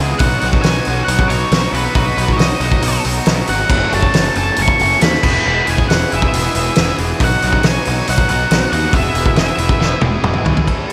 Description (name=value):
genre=indie rock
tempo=137 BPM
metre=4/4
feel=straight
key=E major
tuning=A4 = 441 Hz
part: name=overdriven electric guitar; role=riff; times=0.0-10.9 s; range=E3 to A4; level=-24 LUFS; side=equal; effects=slapback echo
part: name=raw garage guitar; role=riff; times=0.0-10.7 s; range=E2 to G#4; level=-27 LUFS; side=equal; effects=overdrive, lush chorus, slapback echo, digital delay
part: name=fuzz picked electric bass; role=bass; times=0.0-10.6 s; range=E1 to D#2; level=-21 LUFS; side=equal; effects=overdrive
part: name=octave-fuzz lead guitar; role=melody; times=0.2-10.0 s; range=B4 to C#6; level=-21 LUFS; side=equal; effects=distortion
part: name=loose indie drum kit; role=drums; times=0.2-10.9 s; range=crash cymbal, hi-hat, kick drum, snare drum, toms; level=-18 LUFS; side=equal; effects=none
room=moderate concert hall reverb, RT60 2.4 s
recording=big arena sound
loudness=-15 LUFS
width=mono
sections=0.0-10.7 A section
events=drum fill 9.8-10.7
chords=0.2 B; 3.7 F#m; 5.2 E; 7.2 B; 8.9 E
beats=| 0.21 0.65 1.08 1.52 | 1.96 2.40 2.83 3.27 | 3.71 4.14 4.58 5.02 | 5.45 5.89 6.33 6.76 | 7.20 7.63 8.07 8.50 | 8.94 9.38 9.81 10.25 | 10.69